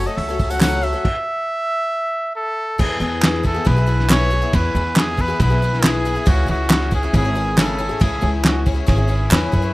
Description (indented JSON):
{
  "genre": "indie folk with a building arrangement",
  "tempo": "138 BPM",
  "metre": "4/4",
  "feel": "straight",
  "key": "E major",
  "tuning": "A4 = 440 Hz",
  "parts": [
    { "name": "clear trumpet", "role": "melody", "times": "0.0-9.7 s", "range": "F#4 to F#5", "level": "-22 LUFS", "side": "right 1 dB", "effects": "digital delay" },
    { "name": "picked twelve-string acoustic guitar", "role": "accompaniment", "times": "0.0-9.7 s", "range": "F#2 to A4", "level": "-24 LUFS", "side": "left 4 dB", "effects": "none" },
    { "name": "upright bass", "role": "bass", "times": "0.0-9.7 s", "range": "G#1 to F#2", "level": "-20 LUFS", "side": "equal", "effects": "none" },
    { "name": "tambourine", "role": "percussion", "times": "0.1-0.8 s", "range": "none", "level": "-35 LUFS", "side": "right 1 dB", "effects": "none" },
    { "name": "cloth-damped thuddy drum kit", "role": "drums", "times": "0.2-9.6 s", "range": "crash cymbal, hi-hat, kick drum, ride cymbal, snare drum", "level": "-19 LUFS", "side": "equal", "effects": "none" },
    { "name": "group handclap", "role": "percussion", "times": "0.6-9.4 s", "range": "none", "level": "-22 LUFS", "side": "right 2 dB", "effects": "none" }
  ],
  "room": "small room reverb",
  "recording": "rough home demo mix",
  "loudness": "-16 LUFS",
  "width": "side -19 dB against mid",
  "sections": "0.0-2.8 A section; 2.8-9.7 B section",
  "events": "stop 1.0-2.8",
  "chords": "0.0 F#m; 1.0 N.C.; 2.8 E; 6.3 C#m"
}